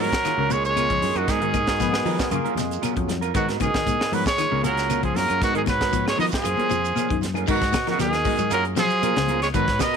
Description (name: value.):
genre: afrobeat.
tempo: 116 BPM.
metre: 4/4.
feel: straight.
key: unclear.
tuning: A4 = 440 Hz.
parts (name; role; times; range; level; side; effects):
bright trumpet; melody; 0.0-10.0 s; F#4 to D#5; -24 LUFS; left 1 dB; none.
growling tenor saxophone; second line; 0.0-10.0 s; B2 to B3; -29 LUFS; right 13 dB; none.
electric guitar at the edge of break-up; arpeggios; 0.0-9.7 s; C#3 to G#3; -30 LUFS; left 15 dB; phaser.
electric guitar at the edge of break-up; stabs; 0.0-10.0 s; E#3 to A#4; -31 LUFS; right 15 dB; warbly pitch drift.
fingered electric bass; bass; 0.0-9.8 s; C#2 to F#3; -28 LUFS; left 1 dB; none.
tight funk drum kit; drums; 0.1-10.0 s; crash cymbal, hi-hat, kick drum, snare drum; -28 LUFS; equal; none.
shekere; percussion; 0.1-9.9 s; none; -35 LUFS; right 8 dB; none.
barky tine electric piano; accompaniment; 0.2-10.0 s; A#3 to B4; -32 LUFS; right 15 dB; none.
claves; percussion; 0.2-9.9 s; none; -38 LUFS; left 16 dB; none.
congas; percussion; 0.5-9.9 s; none; -31 LUFS; left 16 dB; none.
brilliant trombone section; second line; 1.8-3.2 s; F#3 to B3; -31 LUFS; left 13 dB; none.
room: studio ambience.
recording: 1960s-style stereo with parts hard left and right.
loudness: -20 LUFS.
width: side -6 dB against mid.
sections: 0.0-7.5 A section; 7.5-10.0 B section.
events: drum fill 7.0-7.5.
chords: 0.2 F#maj9; 1.3 G#m9; 2.3 F#maj9; 3.3 G#m9; 4.4 F#maj9; 5.4 G#m9; 6.4 F#maj9; 7.5 G#m9; 8.5 F#maj9.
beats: 0.24 0.76 | 1.28 1.79 2.31 2.83 | 3.34 3.86 4.38 4.89 | 5.41 5.93 6.45 6.96 | 7.48 8.00 8.51 9.03 | 9.54.